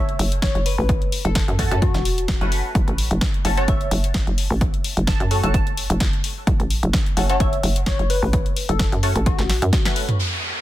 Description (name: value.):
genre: bass house.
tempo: 129 BPM.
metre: 4/4.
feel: swing 54% on 16ths.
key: F# minor.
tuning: A4 = 440 Hz.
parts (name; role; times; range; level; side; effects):
glassy wavetable pluck; melody; 0.0-9.9 s; F#4 to A5; -28 LUFS; left 3 dB; chorus, dub echo.
hollow knocking FM bass; bass; 0.0-9.7 s; E1 to F#2; -22 LUFS; equal; sidechain pumping.
house drum kit; drums; 0.1-10.2 s; hi-hat, snare drum, toms; -26 LUFS; left 1 dB; none.
electronic kick drum; drums; 0.4-9.8 s; none; -21 LUFS; equal; overdrive.
band-passed chord stab; stabs; 1.6-10.2 s; A3 to B4; -28 LUFS; left 1 dB; phaser, analog chorus, sidechain pumping, dub echo.
downlifter; sound effects; 10.2-10.6 s; none; -23 LUFS; equal; none.
room: digital ambience.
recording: dense, heavily limited modern master.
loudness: -18 LUFS.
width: side -14 dB against mid.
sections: 0.0-10.2 A section.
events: drum fill 9.5-10.2; band accent 9.7.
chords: 0.0 F#m.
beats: 0.43 | 0.89 1.36 1.82 2.29 | 2.75 3.22 3.68 4.15 | 4.61 5.08 5.54 6.01 | 6.47 6.94 7.40 7.87 | 8.33 8.80 9.26 9.73 | 10.19.